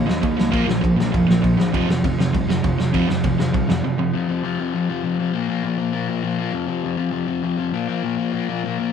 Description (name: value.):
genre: punk rock.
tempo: 200 BPM.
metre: 4/4.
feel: straight.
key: unclear.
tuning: A4 = 440 Hz.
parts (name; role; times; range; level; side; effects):
crunchy overdriven guitar; riff; 0.0-8.9 s; F2 to Bb3; -22 LUFS; left 6 dB; none.
crunchy overdriven guitar; riff; 0.0-4.1 s; F2 to Bb3; -21 LUFS; right 8 dB; none.
picked electric bass; bass; 0.0-3.8 s; F1 to Eb2; -27 LUFS; left 1 dB; none.
loose indie drum kit; drums; 0.1-3.8 s; kick drum, ride cymbal, snare drum; -23 LUFS; equal; none.
room: light reverb.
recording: band playing live in one room.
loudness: -18 LUFS.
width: side -7 dB against mid.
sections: 0.0-4.1 A section; 4.1-8.9 B section.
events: break 3.8-4.1.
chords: 0.0 Eb5; 0.5 Bb5; 1.7 F5; 5.3 Bb5; 6.5 F5; 7.7 Bb5.